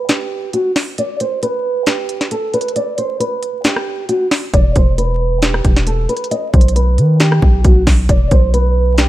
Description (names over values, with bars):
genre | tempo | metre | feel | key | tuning
hip hop, trap | 135 BPM | 4/4 | half-time | E minor | A4 = 440 Hz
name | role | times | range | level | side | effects
nylon-string guitar | melody | 0.0-9.1 s | F#4 to D#5 | -18 LUFS | right 1 dB | low-pass filter
trap drum kit | drums | 0.1-9.1 s | hi-hat, kick drum, rim click, snare drum | -14 LUFS | equal | none
long sustained 808-style bass | bass | 4.5-9.1 s | E1 to D#3 | -14 LUFS | equal | none
room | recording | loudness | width
digital ambience | vinyl crackle | -12 LUFS | side -15 dB against mid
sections
0.0-9.1 A section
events
break 0.0-4.5; filter sweep on nylon-string guitar 0.0-9.1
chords
0.0 N.C.; 4.5 Em; 6.3 B; 8.1 E5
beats
0.09 0.54 | 0.98 1.43 1.87 2.31 | 2.76 3.20 3.65 4.09 | 4.54 4.98 5.42 5.87 | 6.31 6.76 7.20 7.65 | 8.09 8.54 8.98